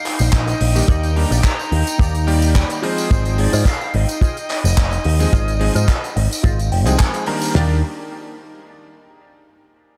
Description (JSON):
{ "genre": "nu-disco, nu disco", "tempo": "108 BPM", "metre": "4/4", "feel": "straight", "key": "Eb major", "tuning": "A4 = 441 Hz", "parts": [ { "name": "silver concert flute", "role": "melody", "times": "0.0-7.0 s", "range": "C5 to Bb5", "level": "-30 LUFS", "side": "equal", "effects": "vintage 12-bit sampler grit, analog delay" }, { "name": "lush unison pad", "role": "sustained chords", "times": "0.0-7.6 s", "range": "Eb4 to G5", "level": "-31 LUFS", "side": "equal", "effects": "chorus, sidechain pumping" }, { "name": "electric guitar with an envelope filter", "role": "riff", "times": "0.0-7.8 s", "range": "Eb4 to Bb5", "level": "-33 LUFS", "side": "equal", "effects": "analog chorus, diffuse ambient delay" }, { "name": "damped 70s drum kit", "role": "drums", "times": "0.1-7.5 s", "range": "handclaps, hi-hat, tambourine", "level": "-28 LUFS", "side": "equal", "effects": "small room ambience" }, { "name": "picked electric bass with an envelope filter", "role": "bass", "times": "0.2-7.8 s", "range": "F1 to Ab2", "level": "-19 LUFS", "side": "equal", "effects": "sidechain pumping" }, { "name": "damped 70s drum kit", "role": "drums", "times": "0.3-7.7 s", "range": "kick drum, snare drum, toms", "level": "-17 LUFS", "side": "equal", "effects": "small room ambience" }, { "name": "bright electric grand piano", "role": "accompaniment", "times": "0.7-7.8 s", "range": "Eb3 to D5", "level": "-27 LUFS", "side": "equal", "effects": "sidechain pumping, diffuse ambient delay" } ], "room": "light reverb", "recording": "none", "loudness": "-17 LUFS", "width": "mono", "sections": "0.0-7.6 A section; 7.6-9.8 B section", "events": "drop 0.0-7.6; clean electric guitar fill 5.9-7.6", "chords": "0.0 Ebmaj7; 2.8 Ab6; 7.6 Ebmaj7" }